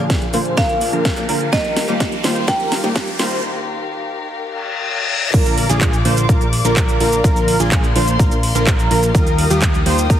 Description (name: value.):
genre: EDM, festival progressive house.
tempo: 126 BPM.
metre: 4/4.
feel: straight.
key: unclear.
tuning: A4 = 435 Hz.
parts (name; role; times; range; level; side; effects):
marimba with medium hard mallets; melody; 0.0-3.5 s; D5 to G5; -24 LUFS; right 1 dB; ping-pong delay.
picked old ladder-braced acoustic guitar; accompaniment; 0.0-3.3 s; Bb2 to Bb4; -26 LUFS; left 3 dB; sidechain pumping.
dark chamber string section; sustained chords; 0.0-10.2 s; Eb2 to Eb6; -26 LUFS; left 4 dB; sidechain pumping.
wide unison lead; arpeggios; 0.0-10.2 s; G4 to C5; -22 LUFS; right 1 dB; ensemble chorus, sidechain pumping, ping-pong delay.
supersaw stab; riff; 0.0-10.2 s; D3 to C5; -22 LUFS; right 1 dB; sidechain pumping, low-pass filter, ping-pong delay.
riser and reverse cymbal; sound effects; 0.5-5.3 s; none; -25 LUFS; left 3 dB; none.
electronic kick drum; drums; 0.1-10.2 s; none; -17 LUFS; equal; overdrive.
house drum kit; drums; 0.1-10.2 s; crash cymbal, handclaps, hi-hat, shaker, snare drum; -23 LUFS; right 1 dB; none.
fat analog bass; bass; 5.3-10.2 s; Bb1 to Eb2; -20 LUFS; equal; sidechain pumping.
room: light reverb.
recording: heavily compressed radio sound, multiband compression, high-pass filter.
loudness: -14 LUFS.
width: side -10 dB against mid.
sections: 0.0-5.3 A section; 5.3-10.2 B section.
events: build-up 0.0-5.3; drum fill 0.0-3.4; filter sweep on supersaw synth 0.0-5.3; filter sweep on analog synth lead 0.0-5.3; filter sweep 0.0-5.3; riser 0.5-3.4; break 3.4-5.3; reverse cymbal 4.5-5.3; drop 5.3-10.2.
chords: 0.0 Bb; 1.5 Ebadd9; 5.3 Bb; 9.1 Ebadd9.